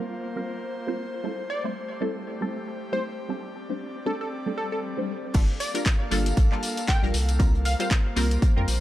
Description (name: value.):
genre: deep house.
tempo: 117 BPM.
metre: 4/4.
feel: swing 57% on 16ths.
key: G dorian.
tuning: A4 = 442 Hz.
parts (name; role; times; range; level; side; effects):
airy breathy pad; sustained chords; 0.0-8.8 s; A3 to F5; -34 LUFS; equal; chorus, sidechain pumping.
filtered dub chord stab; stabs; 0.0-8.8 s; G3 to C5; -31 LUFS; equal; phaser, sidechain pumping, tape echo.
plucky unison lead; melody; 1.5-7.9 s; A4 to G5; -33 LUFS; equal; tape echo.
swell; sound effects; 4.6-5.3 s; none; -37 LUFS; left 8 dB; none.
round analog bass; bass; 5.3-8.8 s; G1 to F2; -24 LUFS; equal; none.
electronic kick drum; drums; 5.3-8.5 s; none; -21 LUFS; equal; none.
house drum kit; drums; 5.3-8.8 s; crash cymbal, handclaps, hi-hat, tambourine; -31 LUFS; left 2 dB; none.
vintage brush drum kit; drums; 5.3-8.8 s; hi-hat, snare drum; -43 LUFS; right 2 dB; none.
room: light reverb, digital ambience.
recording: none.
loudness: -24 LUFS.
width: side -14 dB against mid.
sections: 0.0-5.3 A section; 5.3-8.8 B section.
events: swell 4.6-5.3; drop 5.3-8.8.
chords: 0.0 C7sus4; 1.2 Am7; 3.0 D7sus4; 5.3 Gm9; 7.4 C7sus4.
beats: 0.22 0.73 | 1.24 1.75 2.27 2.78 | 3.29 3.81 4.32 4.83 | 5.34 5.86 6.37 6.88 | 7.40 7.91 8.42.